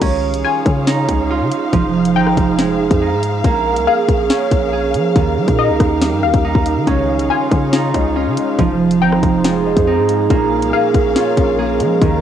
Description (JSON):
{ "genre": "hip hop, drill", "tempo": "140 BPM", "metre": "4/4", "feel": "half-time", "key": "unclear", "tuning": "A4 = 439 Hz", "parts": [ { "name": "dark concert grand piano", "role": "accompaniment", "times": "0.0, 6.9-12.2 s", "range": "Bb2 to F4", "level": "-22 LUFS", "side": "left 11 dB", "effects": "low-pass filter" }, { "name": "dark studio string section", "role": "sustained chords", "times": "0.0-12.2 s", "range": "Db4 to F5", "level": "-24 LUFS", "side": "left 2 dB", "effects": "none" }, { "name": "concert harp", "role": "arpeggios", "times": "0.0-12.2 s", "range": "Eb3 to Ab4", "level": "-16 LUFS", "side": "right 6 dB", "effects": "low-pass filter, analog delay" }, { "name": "hard-hitting 808-style bass", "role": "bass", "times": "0.0-12.2 s", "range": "F1 to G3", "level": "-21 LUFS", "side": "left 2 dB", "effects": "none" }, { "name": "drill drum kit", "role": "drums", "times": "0.0-12.1 s", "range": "crash cymbal, hi-hat, kick drum, rim click, snare drum", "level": "-17 LUFS", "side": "left 2 dB", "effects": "none" }, { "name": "warbly dusty pluck", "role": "second line", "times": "0.4-11.5 s", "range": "Eb5 to Ab5", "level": "-20 LUFS", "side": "left 10 dB", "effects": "chorus, analog delay" } ], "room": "small room ambience", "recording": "home recording on cassette", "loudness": "-13 LUFS", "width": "side -9 dB against mid", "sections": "0.0-12.2 A section", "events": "none", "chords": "0.0 Dbadd9; 1.7 Fm7; 3.4 Bbm7; 5.2 Ebadd9; 6.9 Dbadd9; 8.6 Fm7; 10.3 Bbm7", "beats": "| 0.02 0.44 0.87 1.30 | 1.73 2.16 2.59 3.02 | 3.44 3.87 4.30 4.73 | 5.16 5.59 6.02 6.44 | 6.87 7.30 7.73 8.16 | 8.59 9.02 9.44 9.87 | 10.30 10.73 11.16 11.59 | 12.02" }